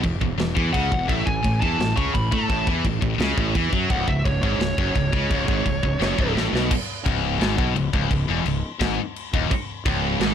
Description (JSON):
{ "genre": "heavy metal", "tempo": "171 BPM", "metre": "4/4", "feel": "straight", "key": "C# minor", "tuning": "A4 = 439 Hz", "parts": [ { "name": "heavy high-gain guitar", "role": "riff", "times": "0.0-10.3 s", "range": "C#2 to A3", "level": "-26 LUFS", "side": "left 12 dB", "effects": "distortion" }, { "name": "heavy high-gain guitar", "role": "riff", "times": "0.0-6.7, 9.5-10.3 s", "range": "C#2 to A3", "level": "-26 LUFS", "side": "right 10 dB", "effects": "distortion" }, { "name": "fuzz fingered electric bass", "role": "bass", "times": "0.0-10.3 s", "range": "C#1 to A2", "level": "-26 LUFS", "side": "equal", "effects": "overdrive" }, { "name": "tight metal drum kit", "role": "drums", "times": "0.0-10.3 s", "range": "china cymbal, crash cymbal, kick drum, snare drum", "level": "-25 LUFS", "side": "equal", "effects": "none" }, { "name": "high-gain lead guitar", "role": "melody", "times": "0.7-6.3 s", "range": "C#5 to C#6", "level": "-28 LUFS", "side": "equal", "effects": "distortion, ping-pong delay" }, { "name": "biting overdriven guitar", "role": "riff", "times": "6.7-10.3 s", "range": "C#2 to B2", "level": "-27 LUFS", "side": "right 1 dB", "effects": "none" } ], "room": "little or no reverb", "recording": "dark, warm production", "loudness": "-20 LUFS", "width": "side -9 dB against mid", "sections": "0.0-6.7 A section; 6.7-10.3 B section", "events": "drum fill 6.4-6.7", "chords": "0.0 E5; 1.1 A5; 3.9 C#5; 6.7 C#m", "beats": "0.04 0.39 0.74 | 1.09 1.44 1.79 2.14 | 2.50 2.85 3.20 3.55 | 3.90 4.25 4.60 4.95 | 5.30 5.65 6.00 6.36 | 6.71 7.06 7.41 7.76 | 8.11 8.46 8.81 9.16 | 9.51 9.86 10.21" }